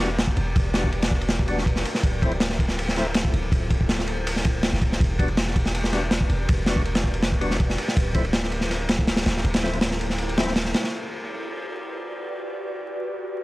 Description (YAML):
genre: drum and bass, jungle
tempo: 162 BPM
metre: 4/4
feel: straight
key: unclear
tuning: A4 = 440 Hz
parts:
  - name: ethereal airy pad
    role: sustained chords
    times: 0.0-13.4 s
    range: F#4 to D5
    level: -34 LUFS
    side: equal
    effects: ensemble chorus, built-in reverb
  - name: percussive tonewheel organ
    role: stabs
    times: 0.0-10.5 s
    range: F3 to F#4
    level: -31 LUFS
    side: left 2 dB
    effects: overdrive, chorus vibrato, slow rotary speaker, dub echo
  - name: long sustained 808-style bass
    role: bass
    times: 0.0-10.7 s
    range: D1 to E1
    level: -27 LUFS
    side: equal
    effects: none
  - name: crunchy breakbeat drum kit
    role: drums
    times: 0.0-10.9 s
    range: kick drum, ride cymbal, snare drum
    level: -23 LUFS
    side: equal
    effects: none
room: small room reverb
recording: dry, gritty hardware recording, vinyl crackle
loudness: -21 LUFS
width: side -19 dB against mid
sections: 0.0-10.9 A section; 10.9-13.4 B section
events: kick drops out 10.2-10.9; filter sweep on ambient pad 10.9-13.4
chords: 0.0 Em9; 2.0 Dm9; 5.0 Em9; 8.0 Dm9; 10.9 Gmaj7/F#